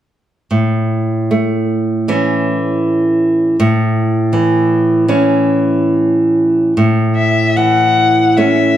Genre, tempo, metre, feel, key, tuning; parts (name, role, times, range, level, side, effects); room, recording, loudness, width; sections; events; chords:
romantic duo for violin and classical guitar; 66-81 BPM; 4/4; rubato; A major; A4 = 443 Hz
nylon-string guitar; accompaniment; 0.5-8.8 s; A2 to C#4; -12 LUFS; right 1 dB
rich violin; melody; 7.2-8.8 s; E5 to F#5; -13 LUFS; left 5 dB
moderate recital hall reverb, RT60 1.4 s; -11 LUFS; side -11 dB against mid
0.5-6.8 A section; 6.8-8.8 B section
0.5 A